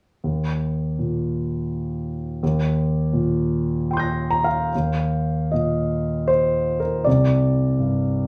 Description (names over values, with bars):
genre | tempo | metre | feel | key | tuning
classical, impressionist solo piano | 70-85 BPM | 3/4 | rubato | Eb major | A4 = 440 Hz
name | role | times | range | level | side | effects
clear concert grand piano | solo | 0.2-8.3 s | C2 to Bb6 | -22 LUFS | equal | none
room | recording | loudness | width
light reverb | small room reverb | -22 LUFS | mono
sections
0.2-4.7 A section; 4.7-8.3 B section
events
none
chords
0.2 Eb5; 2.4 Cm7/Eb; 4.7 Ebsus2; 7.1 Csus2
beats
| 0.24 0.99 1.71 | 2.42 3.13 3.91 | 4.73 5.52 6.29 | 7.06 7.81